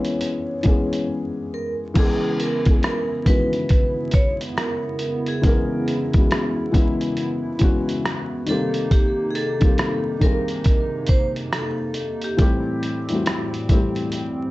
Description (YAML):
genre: lo-fi hip hop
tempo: 69 BPM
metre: 4/4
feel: swing 65% on 16ths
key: unclear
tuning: A4 = 440 Hz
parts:
  - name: vibraphone with hard mallets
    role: melody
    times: 0.0-12.4 s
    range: G4 to C#5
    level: -26 LUFS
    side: right 1 dB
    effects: none
  - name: felt-muted upright piano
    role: accompaniment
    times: 0.0-14.5 s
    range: D#3 to A#4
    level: -24 LUFS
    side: left 2 dB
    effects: none
  - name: lo-fi sampler-style drum kit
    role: drums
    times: 0.0-14.4 s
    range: crash cymbal, hi-hat, kick drum, rim click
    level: -20 LUFS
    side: equal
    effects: none
  - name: hollow soft pad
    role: sustained chords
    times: 2.0-14.5 s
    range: A2 to E4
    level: -30 LUFS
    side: right 2 dB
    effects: chorus
room: light reverb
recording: vinyl crackle, nothing above 8.0 kHz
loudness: -19 LUFS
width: side -18 dB against mid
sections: 0.0-2.0 A section; 2.0-14.5 B section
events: break 0.0-2.0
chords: 0.0 C#m7; 8.5 Cm7; 12.4 Am7